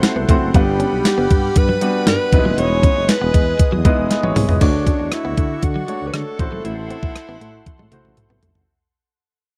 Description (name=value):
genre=1980s-style pop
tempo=118 BPM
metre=4/4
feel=straight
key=unclear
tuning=A4 = 440 Hz
part: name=warm alto saxophone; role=melody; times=0.0-8.1 s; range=D4 to C#5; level=-24 LUFS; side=equal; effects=slapback echo
part: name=clear concert grand piano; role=accompaniment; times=0.0-8.7 s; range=F#3 to F#5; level=-25 LUFS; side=equal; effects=none
part: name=phased analog pad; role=sustained chords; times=0.0-8.7 s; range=G3 to D#6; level=-33 LUFS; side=equal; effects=phaser, chorus
part: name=direct-recorded clean electric guitar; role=riff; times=0.0-8.5 s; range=F#3 to C#4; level=-29 LUFS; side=equal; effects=none
part: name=clean 12-bit digital drum machine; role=drums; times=0.0-8.7 s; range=crash cymbal, hi-hat, kick drum, rim click, snare drum, tambourine, toms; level=-18 LUFS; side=equal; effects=none
part: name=warm tuba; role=bass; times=0.2-8.6 s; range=D#1 to D3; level=-25 LUFS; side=equal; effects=none
room=little or no reverb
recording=dry, close 1970s-style studio recording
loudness=-17 LUFS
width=mono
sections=0.0-4.6 A section; 4.6-8.7 B section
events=drum fill 4.1-4.6, 7.7-8.7; fade-out 4.6-8.7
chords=0.0 Am6; 0.5 Gmaj7; 2.3 Emaj7; 4.6 Dmaj7; 6.4 Am6